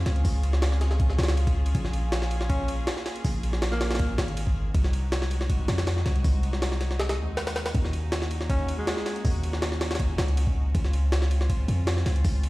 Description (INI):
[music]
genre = drum and bass, jungle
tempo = 160 BPM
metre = 4/4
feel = straight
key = Eb dorian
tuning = A4 = 440 Hz
[part]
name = warm chamber string section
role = sustained chords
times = 0.0-12.5 s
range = Ab3 to Ab4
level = -37 LUFS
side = left 1 dB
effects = vintage 12-bit sampler grit
[part]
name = warm 808-style bass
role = bass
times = 0.0-12.5 s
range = Ab1 to F2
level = -25 LUFS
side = equal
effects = tube saturation
[part]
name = jungle sampler-style drum kit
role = drums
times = 0.1-12.5 s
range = hi-hat, kick drum, ride cymbal, snare drum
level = -28 LUFS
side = equal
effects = overdrive, studio reverb
[part]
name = breathy tenor saxophone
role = melody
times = 2.5-4.2, 8.5-9.3 s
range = Ab3 to Db4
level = -34 LUFS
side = equal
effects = dub echo
[sound]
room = digital ambience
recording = played on a big sound system in a bare room, stone room reverb, vinyl crackle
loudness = -23 LUFS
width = side -19 dB against mid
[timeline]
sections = 0.0-12.5 A section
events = none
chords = 0.0 Dbmaj7; 1.7 Bbm7; 4.7 Ab7/C; 7.7 Ebm7; 10.7 Dbmaj7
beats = | 0.25 0.62 1.00 1.37 | 1.75 2.12 2.50 2.87 | 3.25 3.62 4.00 4.37 | 4.75 5.12 5.50 5.87 | 6.25 6.62 7.00 7.37 | 7.75 8.12 8.50 8.87 | 9.25 9.62 10.00 10.37 | 10.75 11.12 11.50 11.87 | 12.25